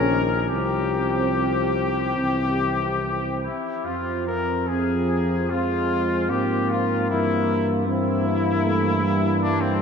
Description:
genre	classical, hymn-like piece for brass band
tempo	70-79 BPM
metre	4/4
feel	rubato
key	F minor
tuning	A4 = 441 Hz
part	warm trumpet section	melody	0.0-9.8 s	C4 to Bb4	-25 LUFS	left 5 dB	none
part	mellow French horn section	second line	0.0-9.8 s	Bb3 to Db4	-28 LUFS	right 5 dB	none
part	clear trombone section	accompaniment	0.0-9.8 s	G3 to Db4	-28 LUFS	left 3 dB	none
part	mellow trombone	accompaniment	0.0-9.8 s	Eb3 to F3	-30 LUFS	right 1 dB	none
part	mellow tuba	bass	0.0-9.8 s	Bb1 to Ab2	-26 LUFS	equal	none
room	wet cathedral reverb, RT60 7.0 s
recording	in a vast, echoing space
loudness	-20 LUFS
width	side -6 dB against mid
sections	0.0-9.8 A section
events	none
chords	0.5 Csus4; 2.2 C; 3.8 Fm; 7.1 Edim/G

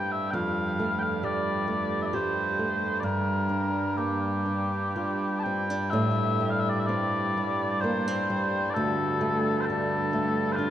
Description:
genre	celtic folk, Celtic slow air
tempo	60-67 BPM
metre	3/4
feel	rubato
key	unclear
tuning	A4 = 440 Hz
part	mellow small bagpipes	melody	0.0-10.7 s	G2 to A5	-27 LUFS	left 1 dB	none
part	flamenco guitar	accompaniment	0.0-10.7 s	D2 to G4	-29 LUFS	right 1 dB	none
room	wet church reverb, RT60 3.0 s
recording	dark, warm production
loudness	-25 LUFS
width	side -11 dB against mid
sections	0.0-5.9 A section; 5.9-10.7 B section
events	none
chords	0.3 Fadd9; 3.0 Gm7; 5.9 Am7; 8.7 D5

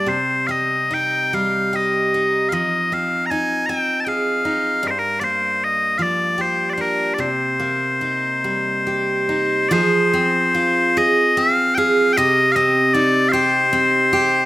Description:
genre	celtic folk, Celtic slow air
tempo	46-52 BPM (dotted quarters)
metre	6/8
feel	rubato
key	C minor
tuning	A4 = 440 Hz
part	loud bright bagpipes	melody	0.0-14.5 s	Bb4 to Bb5	-17 LUFS	left 1 dB	none
part	picked steel-string acoustic guitar	accompaniment	0.0-14.5 s	G2 to Ab4	-21 LUFS	right 2 dB	none
room	light reverb, small room ambience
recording	rough home demo mix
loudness	-16 LUFS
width	side -17 dB against mid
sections	0.0-9.7 A section; 9.7-14.5 B section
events	none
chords	0.1 Cm; 2.5 Fm7; 4.8 Gm7; 7.2 Cm7; 9.7 Fm; 12.2 Cm

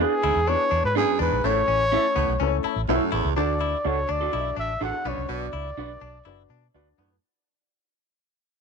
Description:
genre	soul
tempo	125 BPM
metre	4/4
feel	straight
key	D major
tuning	A4 = 440 Hz
part	breathy trumpet	melody	0.0-6.7 s	G#4 to F#5	-25 LUFS	equal	slapback echo
part	warm upright piano	accompaniment	0.0-7.1 s	A3 to A5	-30 LUFS	left 13 dB	none
part	electric guitar through a small old amp	stabs	0.0-7.1 s	C#4 to B4	-28 LUFS	right 13 dB	phaser
part	vintage muted fingered electric bass	bass	0.0-7.2 s	F#1 to B2	-28 LUFS	equal	none
part	direct-recorded clean electric guitar	riff	0.2-7.2 s	A3 to E4	-33 LUFS	left 15 dB	none
part	warm baritone saxophone	riff	0.2-7.2 s	D2 to B2	-30 LUFS	right 13 dB	none
room	little or no reverb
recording	1960s-style stereo with parts hard left and right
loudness	-21 LUFS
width	side -5 dB against mid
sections	0.0-3.4 A section; 3.4-7.2 B section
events	upright piano fill 2.4-3.4; fade-out 3.4-7.2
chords	0.0 E7; 1.4 A; 3.4 D; 5.1 Bm

